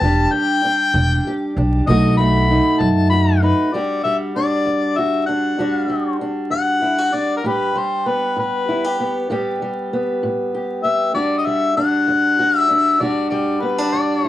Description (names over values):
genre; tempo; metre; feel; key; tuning
acoustic country blues, solo or duo; 65 BPM (dotted quarters); 12/8; straight; E minor; A4 = 442 Hz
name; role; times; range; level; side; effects
mellow harmonica; melody; 0.0-14.3 s; A#4 to B5; -19 LUFS; left 3 dB; cassette tape
fingerpicked steel-string acoustic guitar; accompaniment; 0.0-14.3 s; E2 to G4; -19 LUFS; right 1 dB; cassette tape, plate reverb
upright bass; bass; 0.0-3.5 s; E1 to F#2; -16 LUFS; equal; none
room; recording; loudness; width
wet studio reverb, RT60 0.5 s; home recording on cassette, vinyl crackle; -16 LUFS; side -14 dB against mid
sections
0.0-3.7 A section; 3.7-14.3 B section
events
harmonica solo 0.0-3.7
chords
0.0 Em7; 1.9 B7; 3.7 Em9; 7.4 Asus2; 11.1 Em9